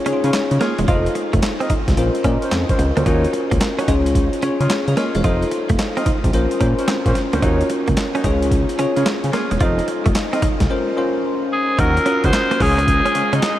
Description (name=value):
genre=R&B, new jack swing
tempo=110 BPM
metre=4/4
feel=swing 66% on 16ths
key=Eb dorian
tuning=A4 = 440 Hz
part: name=bell-like tine electric piano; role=accompaniment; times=0.0-13.6 s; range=Ab3 to F5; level=-21 LUFS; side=left 2 dB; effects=wide subtle chorus, shimmer reverb
part: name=direct-recorded clean electric guitar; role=riff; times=0.1-13.5 s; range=Ab3 to F4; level=-25 LUFS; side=right 2 dB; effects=analog chorus, shimmer reverb
part: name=fat analog bass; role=bass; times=0.1-13.4 s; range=Fb1 to Db3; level=-20 LUFS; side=equal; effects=none
part: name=boom bap sampler-style drum kit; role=drums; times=0.1-13.6 s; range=handclaps, hi-hat, kick drum, snare drum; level=-21 LUFS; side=equal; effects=overdrive
part: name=mellow horn section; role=stabs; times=0.2-13.3 s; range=Gb3 to Eb5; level=-27 LUFS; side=right 1 dB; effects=diffuse ambient delay, shimmer reverb
part: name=raspy tenor saxophone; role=melody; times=11.5-13.6 s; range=Eb4 to C5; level=-18 LUFS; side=equal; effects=shimmer reverb
room=moderate huge ambient reverb, RT60 7.7 s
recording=dreamy mix soaked in reverb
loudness=-16 LUFS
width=side -13 dB against mid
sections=0.0-11.8 A section; 11.8-13.6 B section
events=silent gap 10.7-11.8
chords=0.0 Db; 0.9 F7; 2.0 Bbmadd9; 3.1 Ebm7; 3.9 Db; 5.2 F7; 6.3 Bbmadd9; 7.4 Ebm7; 8.2 Db; 9.6 F7; 10.7 Bbmadd9; 11.8 Ebm7; 12.6 Db